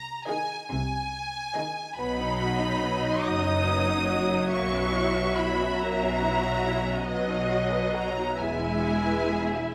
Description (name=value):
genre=classical, slow romantic movement for string orchestra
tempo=47 BPM (dotted quarters)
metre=6/8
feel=rubato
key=B major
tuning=A4 = 440 Hz
part: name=clear studio violin section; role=melody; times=0.0-9.7 s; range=D#5 to D#6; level=-33 LUFS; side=equal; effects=none
part: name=rich studio cello section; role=bass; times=0.0-9.6 s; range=E2 to C3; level=-37 LUFS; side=equal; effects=none
part: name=rich studio double bass section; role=bass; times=0.0-9.6 s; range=E1 to C2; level=-37 LUFS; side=equal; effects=none
part: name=dark studio violin section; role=second line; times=0.3-9.7 s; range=A#3 to E5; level=-33 LUFS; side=equal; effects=none
part: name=rich studio viola section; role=accompaniment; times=0.3-9.7 s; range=Eb3 to F#4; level=-31 LUFS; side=equal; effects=none
room=wet recital hall reverb, RT60 1.6 s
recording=none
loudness=-27 LUFS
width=mono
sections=0.0-9.7 A section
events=none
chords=0.0 Ab/C; 2.0 B; 4.5 F#7/B; 8.4 E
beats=0.70 | 1.98 3.26 | 4.53 5.82 | 7.09 8.41